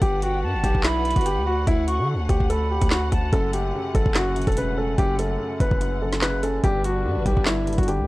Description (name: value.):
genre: hip hop, drill.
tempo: 145 BPM.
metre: 4/4.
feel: half-time.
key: F# phrygian.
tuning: A4 = 439 Hz.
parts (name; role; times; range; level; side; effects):
dark concert grand piano; melody; 0.0-8.0 s; E4 to B4; -26 LUFS; left 1 dB; none.
warm studio string section; sustained chords; 0.0-8.1 s; D3 to F#5; -34 LUFS; left 2 dB; none.
distorted 808-style bass; bass; 0.0-8.1 s; E1 to D3; -25 LUFS; equal; distortion.
drill drum kit; drums; 0.0-8.0 s; handclaps, hi-hat, kick drum, snare drum; -23 LUFS; equal; none.
silver concert flute; second line; 0.2-3.3 s; G5 to C#6; -29 LUFS; right 3 dB; analog delay.
felt-muted upright piano; accompaniment; 3.3-8.1 s; F#2 to C#4; -29 LUFS; equal; none.
room: small room ambience.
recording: dry, gritty hardware recording.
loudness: -20 LUFS.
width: side -19 dB against mid.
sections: 0.0-8.1 A section.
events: none.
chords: 0.0 Gmaj7; 1.7 Dmaj7; 3.3 F#m; 6.6 Gmaj7.